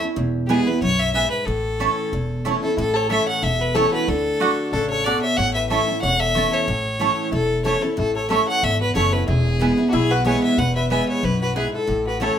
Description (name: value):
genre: bluegrass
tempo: 184 BPM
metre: 4/4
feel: swing 54% on 8ths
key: A major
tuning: A4 = 437 Hz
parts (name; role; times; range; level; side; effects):
- picked steel-string acoustic guitar; accompaniment; 0.0-12.4 s; E2 to F#4; -24 LUFS; equal; none
- upright bass; bass; 0.2-12.3 s; E1 to D2; -25 LUFS; equal; none
- clear fiddle; melody; 0.5-12.4 s; F#4 to F#5; -22 LUFS; left 2 dB; none
- mandolin; stabs; 0.5-12.3 s; A3 to A5; -24 LUFS; right 7 dB; none
- lap resonator guitar; second line; 2.6-12.4 s; D4 to C#5; -26 LUFS; left 2 dB; none
room: wet studio reverb, RT60 0.8 s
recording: band playing live in one room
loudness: -18 LUFS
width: side -9 dB against mid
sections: 0.0-2.8 A section; 2.8-12.4 B section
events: none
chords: 0.2 E; 1.5 A; 4.1 D; 5.4 A; 9.3 E